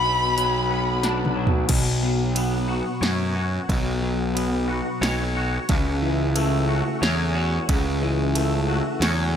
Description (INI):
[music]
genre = post-rock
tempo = 90 BPM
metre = 3/4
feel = straight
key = B minor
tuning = A4 = 440 Hz
[part]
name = rich violin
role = melody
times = 0.0-1.0 s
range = B5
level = -23 LUFS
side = left 3 dB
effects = slapback echo, digital delay
[part]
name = twangy electric guitar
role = arpeggios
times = 0.0-9.4 s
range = B2 to C#5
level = -25 LUFS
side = left 1 dB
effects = ensemble chorus, slapback echo, digital delay
[part]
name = fuzz picked electric bass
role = bass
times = 0.0-9.4 s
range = B1 to F#2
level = -24 LUFS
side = right 1 dB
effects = overdrive
[part]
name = punchy analog drum machine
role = drums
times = 0.4-9.2 s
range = crash cymbal, hi-hat, kick drum, ride cymbal, snare drum, toms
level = -26 LUFS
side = right 1 dB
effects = overdrive
[sound]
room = light reverb, digital ambience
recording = none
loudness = -20 LUFS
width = side -8 dB against mid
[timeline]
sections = 0.0-1.7 A section; 1.7-9.4 B section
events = drum fill 1.0-1.7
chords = 0.0 Bm; 1.7 Bsus2; 5.7 A6/C#